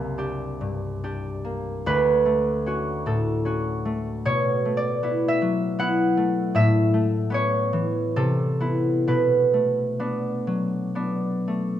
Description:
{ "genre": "classical, solo harp piece", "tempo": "54-81 BPM", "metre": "3/4", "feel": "rubato", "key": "B minor from 6.5 s", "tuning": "A4 = 440 Hz", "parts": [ { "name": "concert harp", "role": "solo", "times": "0.0-11.8 s", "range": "C2 to F#5", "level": "-21 LUFS", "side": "equal", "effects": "none" } ], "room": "moderate stone room reverb, RT60 1.3 s", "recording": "dark, warm production", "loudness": "-21 LUFS", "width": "side -11 dB against mid", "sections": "0.0-11.8 A section", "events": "none", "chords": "0.0 C9; 1.9 Dmaj7; 4.2 Bm11; 6.5 Aadd9; 8.1 Cmaj7; 9.1 Bm7" }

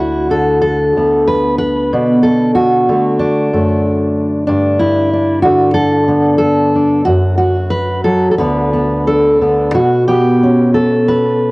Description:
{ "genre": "folk, solo fingerstyle acoustic guitar", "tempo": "92 BPM", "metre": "4/4", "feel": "rubato", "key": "B minor", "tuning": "A4 = 438 Hz", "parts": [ { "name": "fingerpicked steel-string acoustic guitar", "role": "solo", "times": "0.0-11.5 s", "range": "D2 to B4", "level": "-10 LUFS", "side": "equal", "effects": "none" } ], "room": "light reverb", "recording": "home recording on cassette", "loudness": "-10 LUFS", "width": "side -24 dB against mid", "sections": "0.0-9.7 A section; 9.7-11.5 B section", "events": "none", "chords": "0.0 Bm7; 4.5 Gadd9; 7.1 N.C.; 8.4 Bm7; 9.7 Bsus2" }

